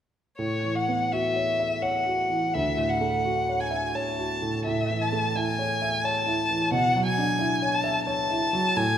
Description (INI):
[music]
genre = classical, impressionist duo for violin and grand piano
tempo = 85 BPM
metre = 3/4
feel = rubato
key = A major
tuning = A4 = 439 Hz
[part]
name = rich violin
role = melody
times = 0.4-9.0 s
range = C#5 to A5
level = -25 LUFS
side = left 2 dB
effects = none
[part]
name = warm grand piano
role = accompaniment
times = 0.4-9.0 s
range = D2 to E5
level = -27 LUFS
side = right 1 dB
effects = none
[sound]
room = moderate scoring stage reverb, RT60 1.8 s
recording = none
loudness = -23 LUFS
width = side -9 dB against mid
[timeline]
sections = 0.4-9.0 A section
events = none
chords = 0.4 A69; 2.5 Dmaj9; 4.7 Amaj7; 6.7 Bm11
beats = | 0.38 1.11 1.83 | 2.54 3.25 3.96 | 4.67 5.36 6.04 | 6.73 7.40 8.07 | 8.77